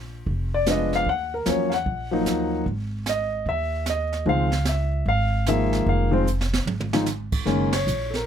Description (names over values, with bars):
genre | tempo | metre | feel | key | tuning
jazz piano trio | 150 BPM | 4/4 | swing 64% on 8ths | Db major | A4 = 440 Hz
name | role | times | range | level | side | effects
upright bass | bass | 0.0-8.3 s | F1 to Fb2 | -26 LUFS | equal | none
jazz brush drum kit | drums | 0.3-8.3 s | brushed snare drum, crash cymbal, hi-hat, kick drum, ride cymbal, snare drum, toms | -29 LUFS | right 3 dB | none
warm grand piano | melody | 0.5-8.3 s | Eb3 to Gb5 | -23 LUFS | left 1 dB | none
room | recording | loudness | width
little or no reverb | close, detailed microphones | -21 LUFS | side -8 dB against mid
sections
0.0-7.5 A section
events
drum fill 6.3-7.1; band accent 7.7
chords
0.0 Bb7b9; 1.1 Ebm9; 2.7 Ab5; 4.3 Dbadd9; 7.5 F#69